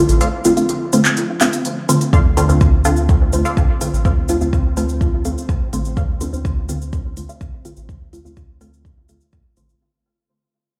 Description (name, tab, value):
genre	dub techno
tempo	125 BPM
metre	4/4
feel	straight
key	D minor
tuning	A4 = 437 Hz
part	warbly tape-like pad	sustained chords	0.0-2.1 s	F3 to E4	-34 LUFS	equal	none
part	filtered dub chord stab	stabs	0.0-9.7 s	D3 to F4	-20 LUFS	equal	chorus, phaser, sidechain pumping, dub echo
part	soft dub sub bass	bass	0.1-9.7 s	A1 to D2	-22 LUFS	equal	sidechain pumping
part	deep house drum kit	drums	0.1-9.7 s	handclaps, hi-hat	-25 LUFS	equal	none
part	cabasa	percussion	0.1-9.8 s	none	-31 LUFS	equal	none
part	filtered dub chord stab	riff	0.2-7.4 s	A4 to F5	-31 LUFS	equal	analog chorus, sidechain pumping, dub echo
part	electronic kick drum	drums	2.1-9.4 s	none	-18 LUFS	equal	none
part	bubbling stepped-filter texture	texture	2.1-9.8 s	C4 to C5	-37 LUFS	equal	chorus, built-in reverb, sidechain pumping
room	light reverb, digital ambience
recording	played on a big sound system in a bare room, large studio reverb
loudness	-17 LUFS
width	mono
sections	0.0-2.1 A section; 2.1-9.8 B section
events	break 0.2-2.1; fade-out 2.1-9.8; filter sweep on synth stab 2.1-9.8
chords	0.0 Dm7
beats	| 0.21 0.69 1.17 1.65 | 2.13 2.61 3.09 3.57 | 4.05 4.53 5.01 5.49 | 5.97 6.45 6.93 7.41 | 7.89 8.37 8.85 9.33